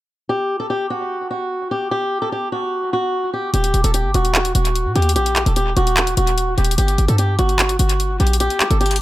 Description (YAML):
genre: hip hop, trap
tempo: 148 BPM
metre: 4/4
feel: half-time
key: unclear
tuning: A4 = 440 Hz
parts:
  - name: fingerpicked swing-style acoustic guitar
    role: melody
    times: 0.3-9.0 s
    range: F#4 to A4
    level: -20 LUFS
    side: equal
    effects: low-pass filter, dub echo
  - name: short 808-style bass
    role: bass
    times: 3.5-9.0 s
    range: Eb1 to Bb2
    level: -18 LUFS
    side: equal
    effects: none
  - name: trap drum kit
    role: drums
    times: 3.5-9.0 s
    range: handclaps, hi-hat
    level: -22 LUFS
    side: equal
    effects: dub echo
room: little or no reverb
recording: echo-heavy mix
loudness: -16 LUFS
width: side -16 dB against mid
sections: 0.3-3.5 A section; 3.5-9.0 B section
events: none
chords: 0.3 N.C.; 3.5 Eb; 6.8 Gm